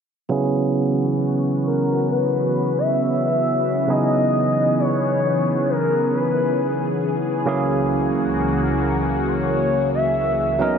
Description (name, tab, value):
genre	R&B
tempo	67 BPM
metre	4/4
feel	straight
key	C# dorian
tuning	A4 = 439 Hz
part	barky tine electric piano	accompaniment	0.3-10.8 s	C#3 to A#4	-22 LUFS	right 3 dB	overdrive, low-pass filter
part	lush unison pad	sustained chords	0.8-10.8 s	C#2 to A#4	-23 LUFS	left 1 dB	chorus, phaser, low-pass filter
part	gliding portamento lead	melody	1.7-10.8 s	A#4 to E5	-22 LUFS	left 2 dB	chorus, low-pass filter, analog delay
room	wet plate reverb, RT60 2.9 s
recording	dreamy mix soaked in reverb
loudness	-18 LUFS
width	side -7 dB against mid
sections	0.3-10.8 A section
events	filter sweep 0.3-10.8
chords	0.3 C#m11; 7.5 F#9/C#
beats	| 0.30 1.20 2.10 2.99 | 3.89 4.78 5.68 6.57 | 7.47 8.36 9.26 10.15